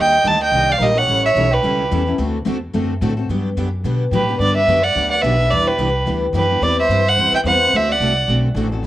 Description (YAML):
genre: acoustic string swing (jazz manouche)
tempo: 216 BPM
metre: 4/4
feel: swing 57% on 8ths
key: G major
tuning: A4 = 439 Hz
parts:
  - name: warm violin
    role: melody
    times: 0.0-2.1, 4.1-8.3 s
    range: B4 to A5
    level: -16 LUFS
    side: right 1 dB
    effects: none
  - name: warm violin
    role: second line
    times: 0.0-2.1, 4.1-8.3 s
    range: G4 to E5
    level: -23 LUFS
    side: right 6 dB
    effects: cassette tape
  - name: picked steel-string acoustic guitar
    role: accompaniment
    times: 0.0-8.9 s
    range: D3 to B4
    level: -24 LUFS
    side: left 5 dB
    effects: cassette tape
  - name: picked steel-string acoustic guitar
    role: accompaniment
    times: 0.0-8.9 s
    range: D3 to B4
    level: -27 LUFS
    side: right 6 dB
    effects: cassette tape
  - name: upright bass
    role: bass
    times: 0.0-8.9 s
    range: G1 to B2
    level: -21 LUFS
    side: equal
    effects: none
room: moderate spring reverb, RT60 1.4 s, studio reverb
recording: home recording on cassette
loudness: -14 LUFS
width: side -14 dB against mid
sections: 0.0-4.4 A section; 4.4-8.9 B section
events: none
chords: 0.0 Ebmaj7; 1.1 A7; 2.2 D7; 3.3 Gmaj7; 5.5 Em7; 6.6 Cmaj7/E; 7.7 D7